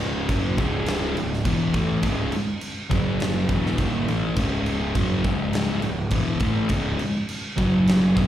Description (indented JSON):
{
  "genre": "stoner and doom metal",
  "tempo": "103 BPM",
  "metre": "4/4",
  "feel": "straight",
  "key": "C# minor",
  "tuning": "A4 = 440 Hz",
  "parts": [
    { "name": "thick fuzz guitar", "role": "riff", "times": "0.0-8.3 s", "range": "C#2 to A3", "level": "-23 LUFS", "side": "equal", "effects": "distortion, slapback echo" },
    { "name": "fuzz picked electric bass", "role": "bass", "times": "0.0-8.3 s", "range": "C#1 to A1", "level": "-28 LUFS", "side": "equal", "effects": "overdrive" },
    { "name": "big rock drum kit", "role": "drums", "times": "0.0-8.3 s", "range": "crash cymbal, kick drum, snare drum", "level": "-27 LUFS", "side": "equal", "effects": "none" }
  ],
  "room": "light reverb",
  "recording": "live gig heard through the venue's PA, recital hall reverb",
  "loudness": "-21 LUFS",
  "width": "side -12 dB against mid",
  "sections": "0.0-8.3 A section",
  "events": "none",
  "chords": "0.0 C#m; 2.9 F#5; 3.5 C#m; 7.6 F#5",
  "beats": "0.30 0.88 1.46 | 2.04 2.63 3.21 3.79 | 4.38 4.96 5.54 6.13 | 6.71 7.29 7.88"
}